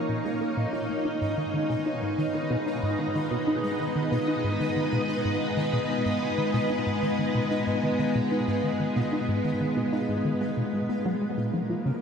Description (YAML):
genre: ambient, sequencer-driven space music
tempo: 93 BPM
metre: 4/4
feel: straight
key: G# dorian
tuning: A4 = 440 Hz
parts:
  - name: string machine, full ensemble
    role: sustained chords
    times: 0.0-12.0 s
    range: E#3 to E#5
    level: -26 LUFS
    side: equal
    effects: ensemble chorus, shimmer reverb
  - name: plucky analog bass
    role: riff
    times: 0.0-11.9 s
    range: G#2 to E#4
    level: -29 LUFS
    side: equal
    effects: ensemble chorus, analog delay
  - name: pulsing gated texture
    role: texture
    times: 0.0-12.0 s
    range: E#3 to E#6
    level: -44 LUFS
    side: left 2 dB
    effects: chorus, built-in reverb, shimmer reverb
room: wet huge ambient reverb, RT60 7.7 s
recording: dreamy mix soaked in reverb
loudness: -24 LUFS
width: side -6 dB against mid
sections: 0.0-12.0 A section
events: fade-in on synth texture 0.0-12.0; filter sweep on analog synth bass 0.0-12.0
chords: 0.0 A#m; 1.1 G#m; 11.4 A#m